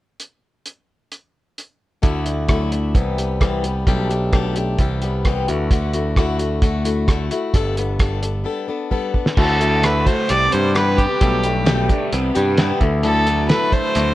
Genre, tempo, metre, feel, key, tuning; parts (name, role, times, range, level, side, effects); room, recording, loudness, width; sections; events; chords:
folk rock and heartland rock; 131 BPM; 4/4; straight; D mixolydian; A4 = 441 Hz
cloth-damped thuddy drum kit; drums; 0.2-14.1 s; crash cymbal, hi-hat, kick drum, rim click, snare drum; -19 LUFS; right 1 dB
picked plugged-in swing-style acoustic guitar; accompaniment; 2.0-14.1 s; B2 to A4; -22 LUFS; left 4 dB
modern bright picked electric bass; bass; 2.0-14.1 s; G1 to G2; -21 LUFS; equal
rich fiddle; melody; 9.4-14.1 s; G4 to D5; -20 LUFS; right 1 dB; tape echo
overdriven electric guitar; riff; 9.4-14.1 s; B2 to G4; -24 LUFS; right 1 dB; phaser
little or no reverb; worn, warbling old tape, cassette tape, warbly pitch drift; -16 LUFS; side -15 dB against mid
0.2-2.0 A section; 2.0-9.4 B section; 9.4-14.1 C section
break 8.5-9.4; drum fill 8.9-9.4
0.2 N.C.; 2.0 Dadd9; 3.0 Cmaj7; 3.9 Gadd9/B; 4.8 Cmaj7; 5.5 Dadd9; 7.5 Gadd9; 9.4 Dadd9; 10.3 Cmaj7; 11.2 Gadd9/B; 12.1 Cmaj7; 12.8 Dadd9